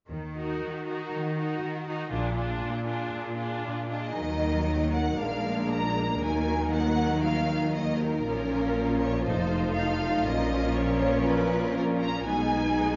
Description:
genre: classical, dramatic, fast romantic movement for symphony orchestra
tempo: 119 BPM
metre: 4/4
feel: rubato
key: Eb minor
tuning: A4 = 440 Hz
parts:
  - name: clear symphonic cello section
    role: bass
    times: 0.1-13.0 s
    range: F2 to Eb3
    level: -36 LUFS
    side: equal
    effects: none
  - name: rich symphonic double bass section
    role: bass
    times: 0.1-13.0 s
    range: F1 to Eb2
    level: -34 LUFS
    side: equal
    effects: none
  - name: rich symphonic violin section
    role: melody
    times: 0.4-13.0 s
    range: Ab4 to Bb5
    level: -35 LUFS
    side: equal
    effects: none
  - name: rich chamber violin section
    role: second line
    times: 0.4-13.0 s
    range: D4 to Bb4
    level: -36 LUFS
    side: equal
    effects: none
  - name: bright symphonic viola section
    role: accompaniment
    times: 0.4-13.0 s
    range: F3 to Eb4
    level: -36 LUFS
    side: equal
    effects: none
  - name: mellow French horn section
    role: sustained chords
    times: 4.2-13.0 s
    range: F3 to Eb4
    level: -32 LUFS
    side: equal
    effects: none
room: wet scoring stage reverb, RT60 1.5 s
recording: nothing above 7.5 kHz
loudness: -28 LUFS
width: mono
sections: 0.1-4.2 A section; 4.2-13.0 B section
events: none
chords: 0.1 Ebm; 2.1 Bb7; 4.2 Ebm; 5.2 Bb7; 6.2 Ebm; 8.3 Bbm; 9.3 F7; 10.3 Bbm; 12.3 Abm/Cb

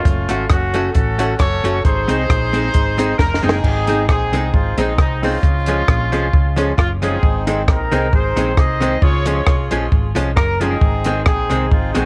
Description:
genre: ska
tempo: 134 BPM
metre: 4/4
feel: swing 55% on 8ths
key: unclear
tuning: A4 = 440 Hz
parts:
  - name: warm horn section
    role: melody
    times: 0.0-12.1 s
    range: Ab3 to Eb5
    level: -23 LUFS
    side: equal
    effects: tape echo
  - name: hollow-body short-scale fingered electric bass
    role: bass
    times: 0.0-12.1 s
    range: F1 to Db2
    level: -23 LUFS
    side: equal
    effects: none
  - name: compact cocktail drum kit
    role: drums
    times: 0.1-12.1 s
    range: crash cymbal, hi-hat, kick drum, rim click, snare drum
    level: -19 LUFS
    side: equal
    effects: none
  - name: archtop guitar, miked and amplified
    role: accompaniment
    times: 0.3-12.1 s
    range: Eb3 to Gb4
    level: -25 LUFS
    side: equal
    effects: none
  - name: clear upright piano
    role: stabs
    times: 0.3-12.1 s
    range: C4 to A4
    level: -29 LUFS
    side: equal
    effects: none
room: studio ambience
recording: none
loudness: -17 LUFS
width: mono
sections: 0.0-3.6 A section; 3.6-12.1 B section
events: drum fill 3.2-3.6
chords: 0.1 Gbm; 1.8 Ab; 5.4 Db; 7.2 Ab; 9.0 Db; 10.8 Ab

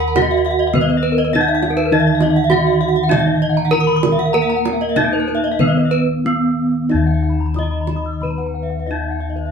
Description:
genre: Balinese gamelan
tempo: 91-102 BPM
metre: 4/4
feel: straight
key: Eb pelog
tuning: A4 = 441 Hz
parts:
  - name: gamelan-type bronze metallophone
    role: melody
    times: 0.0-9.5 s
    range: Cb4 to Eb5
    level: -19 LUFS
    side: right 1 dB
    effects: none
  - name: gamelan-type bronze metallophone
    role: arpeggios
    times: 0.0-9.5 s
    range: Bb4 to Eb6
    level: -23 LUFS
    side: right 2 dB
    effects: none
  - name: gamelan-type bossed gongs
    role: bass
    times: 0.0-9.5 s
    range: Eb2 to Bb4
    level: -21 LUFS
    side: left 2 dB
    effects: none
  - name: gamelan-type bronze metallophone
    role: arpeggios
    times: 0.2-9.4 s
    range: Bb4 to Fb6+35c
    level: -23 LUFS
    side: left 3 dB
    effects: none
  - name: kendang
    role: percussion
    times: 0.2-9.5 s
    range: none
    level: -23 LUFS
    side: right 2 dB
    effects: none
  - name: gamelan-type bronze metallophone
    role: accompaniment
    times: 1.9-9.5 s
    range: Eb3 to Cb4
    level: -21 LUFS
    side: right 2 dB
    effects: none
room: moderate studio reverb, RT60 0.6 s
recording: band playing live in one room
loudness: -14 LUFS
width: side -6 dB against mid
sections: 0.0-6.9 A section; 6.9-9.5 B section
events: drum fill 6.1-6.9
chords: none

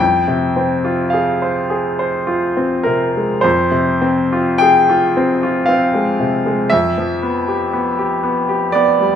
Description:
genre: classical, romantic nocturne for solo piano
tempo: 49-60 BPM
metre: 3/4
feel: rubato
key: F minor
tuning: A4 = 440 Hz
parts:
  - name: bright grand piano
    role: solo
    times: 0.0-9.2 s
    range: F2 to G5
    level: -13 LUFS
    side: equal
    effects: none
room: moderate recital hall reverb, RT60 1.5 s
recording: none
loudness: -14 LUFS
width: side -8 dB against mid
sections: 0.0-3.4 A section; 3.4-9.2 A section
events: none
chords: 0.0 Fm; 6.7 G7/F

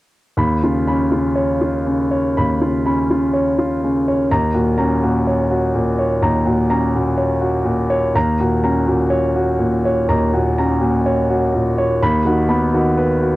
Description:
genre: neoclassical minimalist piano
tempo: 62 BPM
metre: 4/4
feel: rubato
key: Eb minor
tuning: A4 = 439 Hz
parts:
  - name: clear concert grand piano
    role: solo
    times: 0.4-13.4 s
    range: Eb2 to Cb6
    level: -15 LUFS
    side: equal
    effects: cassette tape
room: light reverb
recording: home recording on cassette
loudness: -15 LUFS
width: side -18 dB against mid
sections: 0.4-13.4 A section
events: none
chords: 0.4 Db7/Eb; 4.3 Ebm7; 12.0 B/D#

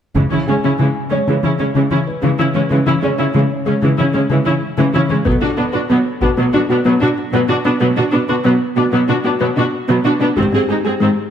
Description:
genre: cinematic, hybrid orchestral and electronic film score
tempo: 94 BPM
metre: 4/4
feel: straight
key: C# phrygian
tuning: A4 = 440 Hz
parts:
  - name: rich symphonic viola section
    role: accompaniment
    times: 0.2-11.1 s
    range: D#3 to G#4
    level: -18 LUFS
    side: right 1 dB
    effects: none
  - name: thumb-piano-like synth pluck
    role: arpeggios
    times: 0.2-11.1 s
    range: C#3 to B4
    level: -18 LUFS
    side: left 3 dB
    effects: chorus, tape echo
  - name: rich symphonic cello section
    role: bass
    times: 0.2-11.1 s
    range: G#2 to C#3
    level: -19 LUFS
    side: right 2 dB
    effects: none
  - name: taiko ensemble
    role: drums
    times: 0.2-1.4, 5.3-6.5, 10.4-11.3 s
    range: none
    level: -23 LUFS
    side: equal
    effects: none
  - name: felt-muted upright piano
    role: texture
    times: 0.5-11.3 s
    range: C#4 to G#5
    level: -26 LUFS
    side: equal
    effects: tape echo
room: moderate scoring stage reverb, RT60 1.6 s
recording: high-pass filter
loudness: -13 LUFS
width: side -9 dB against mid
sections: 0.2-11.3 A section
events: build-up 0.2-11.3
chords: 0.2 C#m; 5.3 Bm; 10.4 G#

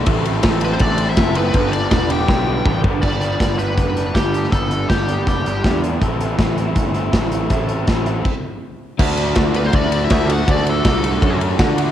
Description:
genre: indie rock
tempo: 162 BPM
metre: 4/4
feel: straight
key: G major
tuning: A4 = 439 Hz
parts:
  - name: brassy analog pad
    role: sustained chords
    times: 0.0-3.0, 9.0-11.9 s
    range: F#4 to D6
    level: -31 LUFS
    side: equal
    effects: none
  - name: crunchy overdriven guitar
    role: riff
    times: 0.0-11.9 s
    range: G2 to A4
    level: -25 LUFS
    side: left 10 dB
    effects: spring reverb, cassette tape
  - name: raw garage guitar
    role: riff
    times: 0.0-11.9 s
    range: G2 to F#4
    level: -24 LUFS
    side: right 10 dB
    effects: overdrive, ensemble chorus, cassette tape
  - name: overdriven picked electric bass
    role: bass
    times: 0.0-11.9 s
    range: E1 to D3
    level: -21 LUFS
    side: equal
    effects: none
  - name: big rock drum kit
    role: drums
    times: 0.1-11.9 s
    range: crash cymbal, hi-hat, kick drum, ride cymbal, snare drum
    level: -18 LUFS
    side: equal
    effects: cassette tape
  - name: nasal lead guitar with a parked wah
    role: melody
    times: 0.6-5.8, 9.6-11.4 s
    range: G4 to G5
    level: -24 LUFS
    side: equal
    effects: overdrive, cassette tape
  - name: dark trumpet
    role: second line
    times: 0.7-2.8, 9.5-11.4 s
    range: A3 to G4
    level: -29 LUFS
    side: left 11 dB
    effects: none
room: light reverb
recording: home recording on cassette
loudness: -15 LUFS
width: side -11 dB against mid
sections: 0.0-3.0 A section; 3.0-9.0 B section; 9.0-11.9 A section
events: drum fill 2.3-3.0; stop 8.3-9.0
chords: 0.1 Am7; 1.5 G; 3.0 Gmaj7; 6.0 Am; 9.0 Dadd9

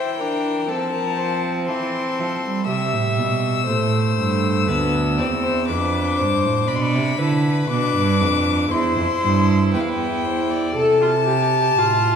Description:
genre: classical, baroque-style fugue for string quartet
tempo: 60 BPM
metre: 4/4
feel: straight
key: unclear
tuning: A4 = 440 Hz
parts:
  - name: warm violin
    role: melody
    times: 0.0-12.2 s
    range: F5 to E6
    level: -23 LUFS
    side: left 6 dB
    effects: none
  - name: warm violin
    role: second line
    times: 0.0-10.8 s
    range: A4 to E5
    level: -26 LUFS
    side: left 3 dB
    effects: none
  - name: warm viola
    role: accompaniment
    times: 0.0-12.2 s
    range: G3 to A4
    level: -23 LUFS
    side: right 1 dB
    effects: none
  - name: rich cello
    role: bass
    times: 0.0-12.2 s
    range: D2 to G3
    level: -22 LUFS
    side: right 3 dB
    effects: none
room: wet recital hall reverb, RT60 1.6 s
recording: heard from further back in the room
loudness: -17 LUFS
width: side -7 dB against mid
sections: 0.0-10.8 A section; 10.8-12.2 B section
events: none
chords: 0.0 C; 0.7 F; 2.7 C; 4.7 Bdim/D; 6.7 G/B; 8.7 C/E; 10.8 Am/C

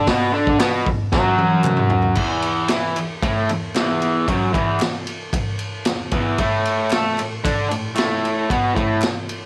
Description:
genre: garage rock duo or trio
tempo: 114 BPM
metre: 4/4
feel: straight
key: unclear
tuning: A4 = 439 Hz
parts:
  - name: raw garage guitar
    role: riff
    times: 0.0-9.0 s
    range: E2 to A4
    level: -22 LUFS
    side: equal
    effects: overdrive
  - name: raw garage drum kit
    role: drums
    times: 0.1-9.4 s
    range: crash cymbal, hi-hat, kick drum, ride cymbal, snare drum, toms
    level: -24 LUFS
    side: equal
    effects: none
  - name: group handclap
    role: percussion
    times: 0.6-9.1 s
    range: none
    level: -36 LUFS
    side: equal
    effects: none
room: light reverb, studio ambience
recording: none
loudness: -20 LUFS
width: mono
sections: 0.0-2.2 A section; 2.2-9.5 B section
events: drum fill 1.1-2.2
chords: 0.0 N.C.; 2.2 Esus4; 6.4 Asus4

